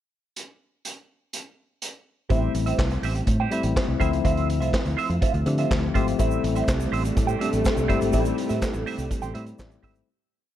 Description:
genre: disco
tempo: 124 BPM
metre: 4/4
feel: straight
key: unclear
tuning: A4 = 436 Hz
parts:
  - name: vintage drum kit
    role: drums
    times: 0.4-10.1 s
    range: handclaps, hi-hat, kick drum, snare drum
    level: -26 LUFS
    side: equal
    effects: none
  - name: clean electric guitar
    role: accompaniment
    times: 2.3-10.0 s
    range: F4 to G5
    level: -30 LUFS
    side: right 8 dB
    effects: wah
  - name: tine electric piano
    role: accompaniment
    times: 2.3-10.1 s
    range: F3 to E5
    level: -27 LUFS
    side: moving between left 9 dB and equal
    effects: auto-pan
  - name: fingered electric bass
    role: bass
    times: 2.3-10.0 s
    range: G1 to D3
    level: -26 LUFS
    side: equal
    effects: none
  - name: dark studio string section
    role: sustained chords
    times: 6.2-10.0 s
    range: C3 to A3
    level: -30 LUFS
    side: right 3 dB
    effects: stereo widening
  - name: tube shaker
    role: percussion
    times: 6.2-10.1 s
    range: none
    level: -45 LUFS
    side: right 9 dB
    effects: none
room: small room ambience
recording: none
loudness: -21 LUFS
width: side -12 dB against mid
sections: 0.4-2.3 pickup bar; 2.3-10.1 pre-chorus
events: fade-out 8.1-10.1; tine electric piano fill 9.1-10.1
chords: 0.4 N.C.; 2.3 Am7; 4.0 Dm9; 6.2 Am7

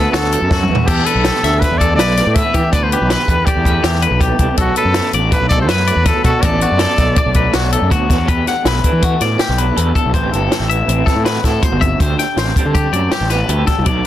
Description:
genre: math rock and midwest emo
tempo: 162 BPM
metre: 5/4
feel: straight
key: E minor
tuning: A4 = 440 Hz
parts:
  - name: clear trumpet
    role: melody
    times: 0.0-7.9 s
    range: F#4 to E5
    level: -19 LUFS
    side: equal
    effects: tape echo
  - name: electric guitar through a small old amp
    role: accompaniment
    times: 0.0-14.1 s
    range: E2 to A4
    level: -22 LUFS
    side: right 5 dB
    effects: tremolo
  - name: twangy electric guitar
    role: arpeggios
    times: 0.0-14.0 s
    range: F#4 to G5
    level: -20 LUFS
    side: left 8 dB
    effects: none
  - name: fuzz picked electric bass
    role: bass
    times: 0.0-14.0 s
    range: G1 to E3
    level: -17 LUFS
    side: equal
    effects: overdrive
  - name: compact cocktail drum kit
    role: drums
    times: 0.1-14.1 s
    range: crash cymbal, hi-hat, kick drum, snare drum, toms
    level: -17 LUFS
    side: equal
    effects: none
room: little or no reverb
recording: dense, heavily limited modern master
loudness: -12 LUFS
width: side -12 dB against mid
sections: 0.0-8.3 A section; 8.3-14.1 B section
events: drum fill 0.5-0.9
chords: 0.0 Bm7; 0.9 Em7; 4.6 Bm7; 8.3 Em11; 10.1 Am7; 12.0 D7sus4

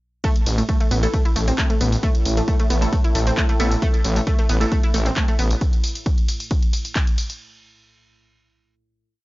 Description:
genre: driving peak-time techno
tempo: 134 BPM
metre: 4/4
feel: straight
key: unclear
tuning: A4 = 444 Hz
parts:
  - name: analog pluck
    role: riff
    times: 0.2-5.5 s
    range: A3 to E4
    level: -26 LUFS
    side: equal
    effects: chorus, tube saturation, sidechain pumping, analog delay
  - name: deep dark ambient pad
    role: drone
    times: 1.5-5.7 s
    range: A2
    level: -32 LUFS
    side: equal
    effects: chorus, built-in reverb, sidechain pumping
  - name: electronic kick drum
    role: drums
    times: 0.2-7.0 s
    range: none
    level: -20 LUFS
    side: equal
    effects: none
  - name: punchy analog drum machine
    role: drums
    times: 0.2-7.4 s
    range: handclaps, hi-hat, ride cymbal, tambourine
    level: -29 LUFS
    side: equal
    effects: none
  - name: detuned saw bass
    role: bass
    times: 0.5-5.5 s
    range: A1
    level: -20 LUFS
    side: equal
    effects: sidechain pumping
  - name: filtered dub chord stab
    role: stabs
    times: 1.0-4.8 s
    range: A3 to A4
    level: -28 LUFS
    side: right 2 dB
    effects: phaser, sidechain pumping, tape echo
room: little or no reverb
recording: dry, gritty hardware recording, transformer saturation, nothing above 7.5 kHz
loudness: -17 LUFS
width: side -19 dB against mid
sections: 0.2-7.4 drop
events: drop 0.2-7.4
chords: 0.2 A5

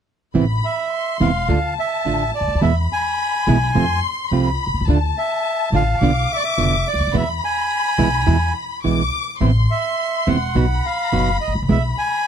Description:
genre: tango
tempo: 106 BPM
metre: 4/4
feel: rubato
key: A harmonic minor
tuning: A4 = 440 Hz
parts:
  - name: nylon-string guitar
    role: accompaniment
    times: 0.3-11.8 s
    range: B2 to F#4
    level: -20 LUFS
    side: right 5 dB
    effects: none
  - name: warm studio violin section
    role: second line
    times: 0.4-12.3 s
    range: A5 to D6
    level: -24 LUFS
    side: left 4 dB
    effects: none
  - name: upright bass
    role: bass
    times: 0.4-11.9 s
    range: E1 to F2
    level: -20 LUFS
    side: left 1 dB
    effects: none
  - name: bandoneon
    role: melody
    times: 0.6-12.3 s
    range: D5 to G#5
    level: -22 LUFS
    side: right 2 dB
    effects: none
room: little or no reverb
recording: close, detailed microphones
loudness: -17 LUFS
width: side -8 dB against mid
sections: 0.4-12.3 A section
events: none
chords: 0.4 Amadd9; 1.5 Dm; 2.6 E; 3.7 F; 4.9 Dm; 6.0 Bdim; 7.1 E; 9.4 Amadd9; 10.6 B; 11.7 E/B

